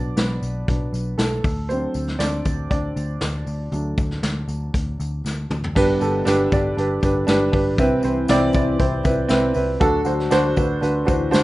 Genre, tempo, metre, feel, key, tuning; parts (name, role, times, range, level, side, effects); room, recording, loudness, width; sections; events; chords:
piano-driven pop; 118 BPM; 4/4; straight; G major; A4 = 440 Hz
dark upright piano; accompaniment; 0.0-11.4 s; G2 to D5; -21 LUFS; right 1 dB
vintage muted picked electric bass; bass; 0.0-11.4 s; G1 to D2; -25 LUFS; equal
vintage brush drum kit; drums; 0.2-11.4 s; crash cymbal, hi-hat, kick drum, snare drum, toms; -24 LUFS; equal
tambourine; percussion; 0.2-11.4 s; -43 LUFS; left 7 dB
mellow French horn section; second line; 5.8-11.4 s; B2 to F#4; -29 LUFS; left 6 dB
moderate studio reverb, RT60 0.6 s; rough home demo mix, nothing above 10.5 kHz; -18 LUFS; side -17 dB against mid
0.0-5.8 A section; 5.8-11.4 B section
upright piano solo 0.0-5.8; drum fill 5.2-5.8
0.0 Bm; 1.4 D; 5.8 G; 7.8 Cmaj7; 9.8 D